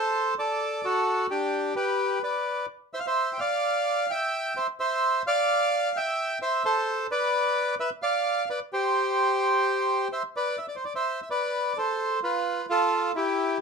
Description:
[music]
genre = tango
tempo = 130 BPM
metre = 4/4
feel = rubato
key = C major, A minor from 10.6 s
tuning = A4 = 438 Hz
[part]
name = bandoneon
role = solo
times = 0.0-13.6 s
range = D4 to G5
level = -24 LUFS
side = right 1 dB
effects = none
[sound]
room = wet club reverb, RT60 0.6 s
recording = minimal, uncompressed stereo recording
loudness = -24 LUFS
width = side -5 dB against mid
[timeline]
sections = 0.0-10.6 A section; 10.6-13.6 B section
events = none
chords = 0.4 D; 1.3 G; 4.1 C; 5.0 F5; 5.9 C; 6.9 D5; 7.8 Bdim; 8.7 C5; 10.6 Am; 12.4 Dm (rootless)

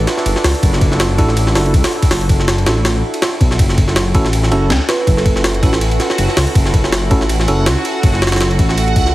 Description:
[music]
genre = drum and bass, jungle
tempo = 162 BPM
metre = 4/4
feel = swing 55% on 16ths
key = F# minor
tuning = A4 = 440 Hz
[part]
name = buzzing kalimba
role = melody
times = 0.0-0.1, 4.9-5.5 s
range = A4 to B4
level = -26 LUFS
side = right 3 dB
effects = dub echo
[part]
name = warbly tape-like pad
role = sustained chords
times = 0.0-9.1 s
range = C#4 to A4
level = -23 LUFS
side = right 1 dB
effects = chorus, built-in reverb
[part]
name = dark detuned saw bass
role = bass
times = 0.0-9.1 s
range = F#1 to C#2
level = -16 LUFS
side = equal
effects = none
[part]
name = jungle sampler-style drum kit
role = drums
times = 0.1-9.1 s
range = hi-hat, kick drum, ride cymbal, snare drum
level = -15 LUFS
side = equal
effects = overdrive, studio reverb
[part]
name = bell-like tine electric piano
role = stabs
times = 1.2-7.7 s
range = C#4 to A4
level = -22 LUFS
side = right 1 dB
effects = dub echo
[part]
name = backwards swelling texture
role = texture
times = 4.4-9.1 s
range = F#4 to F#5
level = -24 LUFS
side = right 3 dB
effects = built-in reverb
[sound]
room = light reverb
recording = heavily compressed radio sound, multiband compression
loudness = -12 LUFS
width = side -16 dB against mid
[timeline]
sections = 0.0-9.1 A section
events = none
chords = 0.0 Dadd9/F#; 3.6 F#m7

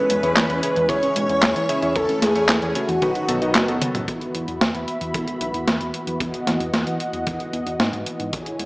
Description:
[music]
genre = synthwave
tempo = 113 BPM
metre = 4/4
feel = straight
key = E major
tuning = A4 = 440 Hz
[part]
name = warm velvety synth lead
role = melody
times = 0.0-3.8 s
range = F#4 to C#5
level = -22 LUFS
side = equal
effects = chorus, tape echo
[part]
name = string machine, violins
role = second line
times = 0.0-3.8 s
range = F#4 to C#5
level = -30 LUFS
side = equal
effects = ensemble chorus, digital delay
[part]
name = warm analog pad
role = sustained chords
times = 0.0-8.7 s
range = D#3 to B5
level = -27 LUFS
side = equal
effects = chorus, sidechain pumping
[part]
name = soft round pluck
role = arpeggios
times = 0.0-8.7 s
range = C#3 to E4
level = -31 LUFS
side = right 1 dB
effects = none
[part]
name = clear electric grand piano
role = stabs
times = 0.0-4.0 s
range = A3 to E5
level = -28 LUFS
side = left 1 dB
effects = digital delay
[part]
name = chorused synth bass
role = bass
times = 0.1-8.7 s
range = F#1 to G#2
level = -29 LUFS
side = equal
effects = tube saturation, sidechain pumping
[part]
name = clean 12-bit digital drum machine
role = drums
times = 0.1-8.7 s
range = handclaps, hi-hat, snare drum, toms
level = -22 LUFS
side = equal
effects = none
[part]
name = kick drum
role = drums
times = 0.9-8.4 s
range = none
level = -34 LUFS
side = equal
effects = none
[sound]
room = moderate lush hall reverb, RT60 1.6 s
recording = small speaker sound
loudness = -19 LUFS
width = side -23 dB against mid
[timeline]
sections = 0.0-4.1 A section; 4.1-8.7 B section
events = drum fill 3.8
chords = 0.0 C#m/E; 2.0 A/E; 3.0 B; 4.1 Esus2; 6.2 B/E

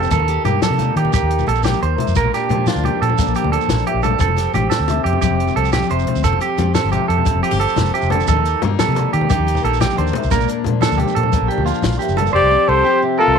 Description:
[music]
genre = highlife guitar band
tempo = 118 BPM (dotted quarters)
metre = 12/8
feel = straight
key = F mixolydian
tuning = A4 = 442 Hz
[part]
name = picked steel-string acoustic guitar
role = accompaniment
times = 0.0-13.4 s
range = F2 to G4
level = -23 LUFS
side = left 12 dB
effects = none
[part]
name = clean electric guitar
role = arpeggios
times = 0.0-13.4 s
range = F4 to C5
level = -19 LUFS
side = right 11 dB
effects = slapback echo
[part]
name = vintage muted fingered electric bass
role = bass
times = 0.0-13.4 s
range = F1 to Eb3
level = -20 LUFS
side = equal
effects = none
[part]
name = congas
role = percussion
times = 0.0-12.3 s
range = none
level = -24 LUFS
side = left 9 dB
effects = none
[part]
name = shekere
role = percussion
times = 0.0-12.3 s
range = none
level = -27 LUFS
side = right 6 dB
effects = none
[part]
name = compact cocktail drum kit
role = drums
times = 0.1-12.3 s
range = hi-hat, kick drum, snare drum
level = -23 LUFS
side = left 3 dB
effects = none
[part]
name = mellow trumpet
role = melody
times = 12.3-13.4 s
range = A4 to D5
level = -14 LUFS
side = right 1 dB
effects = none
[part]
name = clear alto saxophone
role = second line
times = 12.4-13.4 s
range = F4 to G4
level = -20 LUFS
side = left 15 dB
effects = slapback echo
[sound]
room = light reverb, small room ambience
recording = 1960s-style stereo with parts hard left and right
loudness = -14 LUFS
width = side -6 dB against mid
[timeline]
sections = 0.0-12.3 A section; 12.3-13.4 B section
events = none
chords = 0.1 Eb; 2.2 Bb; 4.2 Fsus2; 8.3 Eb; 10.3 Bb; 12.3 Fsus2

